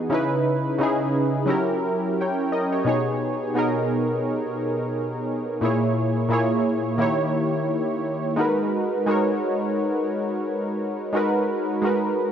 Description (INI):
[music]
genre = hip hop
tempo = 87 BPM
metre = 4/4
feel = swing 57% on 16ths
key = G# minor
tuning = A4 = 438 Hz
[part]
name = warm analog keys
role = solo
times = 0.0-12.3 s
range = A#2 to G5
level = -21 LUFS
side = equal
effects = chorus, cassette tape, low-pass filter, analog delay
[sound]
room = moderate echo chamber reverb, RT60 1.4 s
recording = dark, warm production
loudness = -21 LUFS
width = side -8 dB against mid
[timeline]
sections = 0.0-12.3 A section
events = none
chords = 0.1 C#m9; 1.5 F#7b9; 2.9 B69; 5.6 A#m7b5; 7.0 D#7b9; 8.4 G#m9